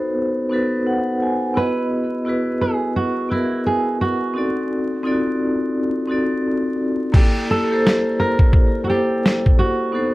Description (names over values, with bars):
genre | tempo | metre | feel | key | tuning
lo-fi hip hop | 86 BPM | 4/4 | swing 62% on 16ths | unclear | A4 = 442 Hz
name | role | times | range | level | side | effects
nylon-string guitar | melody | 0.0-10.1 s | B3 to B4 | -23 LUFS | right 2 dB | low-pass filter
vibraphone with medium hard mallets | accompaniment | 0.0-10.1 s | Bb3 to Ab5 | -20 LUFS | left 1 dB | low-pass filter
dusty soul sampler-style drum kit | drums | 7.1-9.6 s | crash cymbal, kick drum, snare drum | -15 LUFS | equal | none
room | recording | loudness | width
moderate small room reverb, RT60 0.5 s | vinyl crackle, lossy compression artefacts | -17 LUFS | side -18 dB against mid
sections
0.0-7.1 A section; 7.1-10.1 B section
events
vibraphone fill 0.5-1.6; hi-hats muted 7.1-10.1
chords
0.0 B7b9; 1.6 Emaj9; 4.3 D7b9; 7.1 Gm69